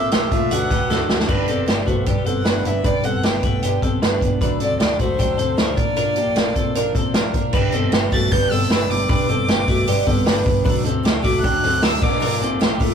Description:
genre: jangly indie pop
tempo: 154 BPM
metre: 4/4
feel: straight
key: G major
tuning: A4 = 440 Hz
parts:
  - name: dark violin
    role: melody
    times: 0.0-12.4 s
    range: C5 to A6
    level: -24 LUFS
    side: left 1 dB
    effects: none
  - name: glockenspiel with rubber mallets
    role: second line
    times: 0.0-1.1, 8.1-12.4 s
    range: D6 to A6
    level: -30 LUFS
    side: equal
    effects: none
  - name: picked twelve-string acoustic guitar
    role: accompaniment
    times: 0.0-12.9 s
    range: G2 to F#4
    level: -25 LUFS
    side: right 3 dB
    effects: none
  - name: twelve-string electric guitar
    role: arpeggios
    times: 0.0-12.9 s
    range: A3 to B4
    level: -24 LUFS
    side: equal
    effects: none
  - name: vintage muted fingered electric bass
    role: bass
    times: 0.0-12.9 s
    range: G1 to D2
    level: -27 LUFS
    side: left 1 dB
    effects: none
  - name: vintage drum kit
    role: drums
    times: 0.1-12.9 s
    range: crash cymbal, hi-hat, kick drum, snare drum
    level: -20 LUFS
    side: equal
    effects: none
  - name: group handclap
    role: percussion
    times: 0.1-1.0 s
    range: none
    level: -35 LUFS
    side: right 2 dB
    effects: none
room: wet booth ambience, RT60 0.2 s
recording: rough rehearsal-room recording, warm saturation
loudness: -16 LUFS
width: side -7 dB against mid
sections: 0.0-1.3 A section; 1.3-7.5 B section; 7.5-12.9 A section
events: drum fill 0.9-1.3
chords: 0.0 Bb; 0.5 Dadd9; 1.3 G; 4.4 D; 5.8 Bb; 7.5 G; 10.7 D; 12.0 Bb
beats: 0.12 0.51 0.90 | 1.29 1.68 2.06 2.46 | 2.85 3.23 3.63 4.02 | 4.41 4.80 5.19 5.58 | 5.97 6.36 6.75 7.14 | 7.53 7.92 8.31 8.71 | 9.10 9.49 9.88 10.27 | 10.66 11.05 11.44 11.83 | 12.22 12.61

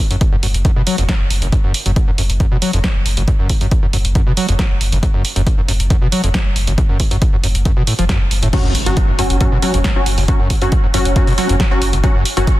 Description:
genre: driving peak-time techno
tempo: 137 BPM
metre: 4/4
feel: straight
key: unclear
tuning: A4 = 440 Hz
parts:
  - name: overdriven acid bass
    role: riff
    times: 0.1-12.4 s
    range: F#1 to F#3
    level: -20 LUFS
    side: equal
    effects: analog chorus, sidechain pumping, dub echo
  - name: warm sub bass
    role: bass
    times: 0.1-12.5 s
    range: F#1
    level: -18 LUFS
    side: equal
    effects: tube saturation, sidechain pumping, low-pass filter
  - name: punchy analog drum machine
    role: drums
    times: 0.1-12.6 s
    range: crash cymbal, hi-hat, snare drum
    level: -22 LUFS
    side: right 1 dB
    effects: sidechain pumping on hats, sidechain pumping on cymbals
  - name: electronic kick drum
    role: drums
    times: 0.2-12.6 s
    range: none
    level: -15 LUFS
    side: equal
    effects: none
  - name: rave stab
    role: stabs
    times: 8.5-12.5 s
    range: F#3 to F#4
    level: -19 LUFS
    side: left 1 dB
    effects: chorus, built-in reverb, sidechain pumping, dub echo
  - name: impact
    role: sound effects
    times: 8.5-10.3 s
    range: none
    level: -24 LUFS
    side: equal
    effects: none
room: little or no reverb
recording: dense, heavily limited modern master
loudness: -13 LUFS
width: side -16 dB against mid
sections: 0.0-8.5 A section; 8.5-12.6 B section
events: drop 8.5-12.6; impact 8.5-10.3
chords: 0.0 N.C.; 8.5 F#5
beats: 0.21 0.65 1.09 | 1.52 1.96 2.40 2.84 | 3.28 3.71 4.15 4.59 | 5.03 5.47 5.90 6.34 | 6.78 7.22 7.66 8.09 | 8.53 8.97 9.41 9.85 | 10.28 10.72 11.16 11.60 | 12.04 12.47

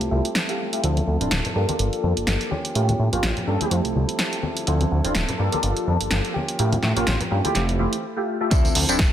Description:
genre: filtered disco house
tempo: 125 BPM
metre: 4/4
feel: swing 56% on 16ths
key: D minor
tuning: A4 = 444 Hz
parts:
  - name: funky polysynth comp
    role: accompaniment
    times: 0.0-9.0 s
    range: F3 to A4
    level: -26 LUFS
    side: equal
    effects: chorus, phaser, sidechain pumping, low-pass filter
  - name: direct-recorded clean electric guitar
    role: riff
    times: 0.0-9.1 s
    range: E3 to A4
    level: -31 LUFS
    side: right 2 dB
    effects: vintage 12-bit sampler grit, sidechain pumping, low-pass filter
  - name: fat analog bass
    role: bass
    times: 0.0-9.1 s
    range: D1 to A2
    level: -23 LUFS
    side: equal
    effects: tube saturation, sidechain pumping, low-pass filter
  - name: punchy analog drum machine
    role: drums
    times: 0.0-9.1 s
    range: hi-hat, snare drum, tambourine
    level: -25 LUFS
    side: right 1 dB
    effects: sidechain pumping on hats, sidechain pumping on perc
  - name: tambourine and congas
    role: percussion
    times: 0.8-8.0 s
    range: none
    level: -31 LUFS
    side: left 3 dB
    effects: sidechain pumping on perc, low-pass filter on perc
  - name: brilliant horn section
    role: melody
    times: 3.1-3.8, 7.0-7.6 s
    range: F4 to A4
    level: -31 LUFS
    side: right 1 dB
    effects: vintage 12-bit sampler grit, sidechain pumping, low-pass filter, ping-pong delay
  - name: electronic kick drum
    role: drums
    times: 8.5-9.1 s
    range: none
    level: -19 LUFS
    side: equal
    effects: none
room: light reverb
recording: none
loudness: -20 LUFS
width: side -10 dB against mid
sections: 0.0-8.5 A section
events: filter sweep 0.0-8.5; break 8.0-8.5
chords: 0.0 Fmaj9; 0.8 Dm9; 1.6 Gm9; 2.5 A7b9b13; 3.7 Fmaj9; 4.7 Dm9; 5.4 Gm9; 6.4 A7b9b13; 7.6 Fmaj9; 8.5 Dm9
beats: 0.35 | 0.83 1.31 1.79 2.27 | 2.75 3.23 3.71 4.20 | 4.67 5.16 5.63 6.12 | 6.59 7.08 7.55 8.04 | 8.52 8.99

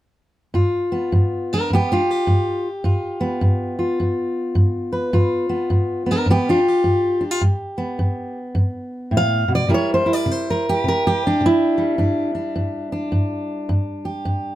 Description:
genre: acoustic country blues, solo or duo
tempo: 105 BPM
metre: 4/4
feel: swing 63% on 8ths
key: G mixolydian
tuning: A4 = 445 Hz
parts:
  - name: fingerpicked steel-string acoustic guitar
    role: solo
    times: 0.5-14.6 s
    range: G2 to F5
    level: -18 LUFS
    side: equal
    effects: none
room: light reverb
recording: none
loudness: -18 LUFS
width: side -14 dB against mid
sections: 0.5-14.6 A section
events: none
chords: 0.5 G7; 9.7 C7; 12.0 G5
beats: | 0.55 1.12 1.69 2.27 | 2.84 3.41 3.98 4.56 | 5.13 5.70 6.27 6.85 | 7.42 7.99 8.56 9.13 | 9.70 10.27 10.84 11.41 | 11.98 12.55 13.12 13.69 | 14.26

